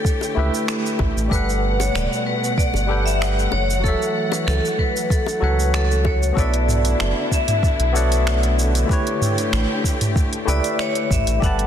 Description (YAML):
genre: sunset chillout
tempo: 95 BPM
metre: 4/4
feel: straight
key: B minor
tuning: A4 = 440 Hz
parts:
  - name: vibraphone with hard mallets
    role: melody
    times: 0.0-11.7 s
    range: A4 to F#5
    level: -25 LUFS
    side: left 2 dB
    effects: digital delay
  - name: barky tine electric piano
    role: accompaniment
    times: 0.0-11.7 s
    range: F#3 to A5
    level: -25 LUFS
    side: moving between left 4 dB and right 2 dB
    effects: auto-pan, tape echo
  - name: dark studio string section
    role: sustained chords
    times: 0.0-11.7 s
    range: B2 to A5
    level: -27 LUFS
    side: left 1 dB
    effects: none
  - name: electronic kick drum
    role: drums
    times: 0.0-11.6 s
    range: none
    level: -20 LUFS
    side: equal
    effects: none
  - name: smooth R&B drum kit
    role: drums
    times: 0.1-11.7 s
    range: finger snaps, hi-hat, shaker, toms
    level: -26 LUFS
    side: right 2 dB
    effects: soft clipping on snare
  - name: bongos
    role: percussion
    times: 0.2-6.2 s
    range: none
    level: -32 LUFS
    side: left 7 dB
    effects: none
  - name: round analog bass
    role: bass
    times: 0.4-11.7 s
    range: D1 to C#2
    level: -20 LUFS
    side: equal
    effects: none
room: light reverb, digital ambience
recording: dense, heavily limited modern master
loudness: -17 LUFS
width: side -9 dB against mid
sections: 0.0-6.4 A section; 6.4-11.7 B section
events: none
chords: 0.0 A7; 1.3 Gmaj9; 3.5 F#m7; 6.4 Bm11; 8.9 A7